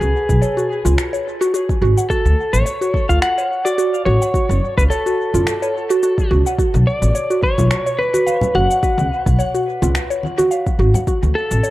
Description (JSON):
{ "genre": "organic downtempo", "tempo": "107 BPM", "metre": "4/4", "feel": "swing 55% on 16ths", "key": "unclear", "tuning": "A4 = 440 Hz", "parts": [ { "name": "electric slide guitar", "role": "melody", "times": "0.0-11.7 s", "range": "G#4 to F#5", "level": "-21 LUFS", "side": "left 1 dB", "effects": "dub echo" }, { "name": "upright bass", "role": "bass", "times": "0.0-11.6 s", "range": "F#1 to D2", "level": "-17 LUFS", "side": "equal", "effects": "none" }, { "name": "electronic shaker and finger snaps", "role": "drums", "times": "0.0-11.7 s", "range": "none", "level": "-28 LUFS", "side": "left 2 dB", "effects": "overdrive, dub echo" }, { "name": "electronic kick drum", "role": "drums", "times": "0.3-11.2 s", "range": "none", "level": "-20 LUFS", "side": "equal", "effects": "overdrive" }, { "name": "mallet-like synth pluck", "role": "arpeggios", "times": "0.4-11.7 s", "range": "E#4 to F#5", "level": "-20 LUFS", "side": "right 1 dB", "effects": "chorus, dub echo" }, { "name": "congas", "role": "percussion", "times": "6.7-11.3 s", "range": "none", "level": "-25 LUFS", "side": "left 1 dB", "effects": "dub echo" } ], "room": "moderate spring reverb, RT60 2.3 s", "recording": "echo-heavy mix", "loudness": "-14 LUFS", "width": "side -16 dB against mid", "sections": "0.0-11.7 A section", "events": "none", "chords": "0.0 C#sus4; 2.1 Dmaj7 (rootless); 4.3 F#m; 6.6 Bmadd9; 8.8 C#sus4; 11.1 Dmaj7" }